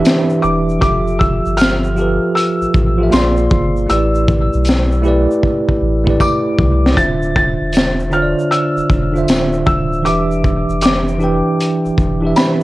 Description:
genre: lo-fi hip hop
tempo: 78 BPM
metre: 4/4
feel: swing 66% on 16ths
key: D dorian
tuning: A4 = 440 Hz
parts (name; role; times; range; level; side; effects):
- felt-muted upright piano; melody; 0.0-12.6 s; B5 to A6; -20 LUFS; left 1 dB; low-pass filter, analog delay, plate reverb
- bell-like tine electric piano; accompaniment; 0.0-12.6 s; D3 to G5; -16 LUFS; right 1 dB; medium stereo tremolo, cassette tape, low-pass filter, plate reverb
- warm sub bass; bass; 0.0-12.3 s; D1 to C2; -18 LUFS; equal; none
- crunchy breakbeat drum kit; drums; 0.1-12.6 s; hi-hat, kick drum, shaker, snare drum; -16 LUFS; equal; none
- tambourine; percussion; 0.1-12.6 s; none; -32 LUFS; left 4 dB; none
room: moderate studio reverb, RT60 0.6 s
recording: cassette tape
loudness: -12 LUFS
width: side -18 dB against mid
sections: 0.0-12.6 A section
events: drum fill 5.4-7.0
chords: 0.0 Em7; 0.8 Fmaj7; 3.1 Bb9; 3.9 A7sus4; 7.0 Dm7; 10.1 Em7

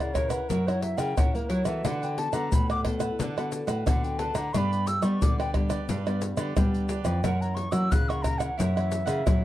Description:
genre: samba and choro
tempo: 89 BPM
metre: 4/4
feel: straight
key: unclear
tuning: A4 = 440 Hz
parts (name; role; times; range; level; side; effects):
- wooden flute; melody; 0.0-9.4 s; A#4 to F#6; -31 LUFS; equal; none
- cavaquinho; accompaniment; 0.0-9.4 s; D4 to F#5; -38 LUFS; right 4 dB; none
- nylon-string guitar; accompaniment; 0.0-9.4 s; F#2 to A#4; -34 LUFS; left 1 dB; none
- nylon-string guitar; bass; 0.0-9.4 s; E#2 to C#4; -29 LUFS; equal; none
- egg shaker, pandeiro, tamborim and surdo; percussion; 0.0-9.4 s; none; -27 LUFS; equal; none
room: light reverb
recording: dark, warm production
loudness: -24 LUFS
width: side -14 dB against mid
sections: 0.0-9.4 A section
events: flute solo 0.0-9.4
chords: 0.0 F#7; 1.8 D6; 4.5 G; 7.2 F#7

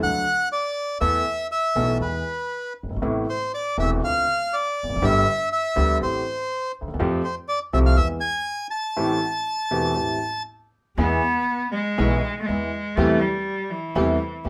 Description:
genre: tango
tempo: 121 BPM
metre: 4/4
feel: rubato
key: A minor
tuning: A4 = 435 Hz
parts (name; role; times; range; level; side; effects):
- bandoneon; melody; 0.0-10.4 s; B4 to A5; -26 LUFS; equal; none
- warm grand piano; accompaniment; 0.0-14.5 s; E1 to A4; -26 LUFS; equal; none
- upright bass; bass; 0.0-14.5 s; E1 to F2; -28 LUFS; equal; none
- bright cello; second line; 11.0-14.5 s; E3 to B3; -27 LUFS; equal; none
- dark chamber string section; stabs; 11.0-14.5 s; G#3 to G4; -31 LUFS; equal; none
room: moderate club reverb, RT60 0.6 s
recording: none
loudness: -23 LUFS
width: mono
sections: 0.0-11.0 A section; 11.0-14.5 B section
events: break 9.0-11.0; cello solo 11.0-14.5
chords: 0.0 D; 1.0 Esus4; 2.0 E; 3.0 Amadd9; 4.0 Dm7; 5.0 G; 6.0 Am7; 7.0 Fadd9; 8.0 E; 9.0 Am7; 11.0 E; 13.0 Am7/E

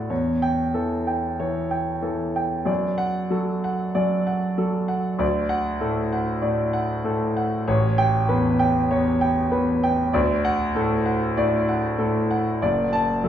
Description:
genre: classical, romantic character piece for solo piano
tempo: 96 BPM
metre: 4/4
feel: rubato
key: D major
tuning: A4 = 439 Hz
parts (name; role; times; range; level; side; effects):
- clear concert grand piano; solo; 0.0-13.3 s; F#1 to A5; -20 LUFS; equal; none
room: wet large studio reverb, RT60 1.3 s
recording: heard from further back in the room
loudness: -20 LUFS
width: side -10 dB against mid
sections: 0.0-13.3 A section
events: none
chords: 0.1 A7/E; 2.7 D/F#; 5.2 D; 7.7 A9; 10.1 D; 12.6 D/F#

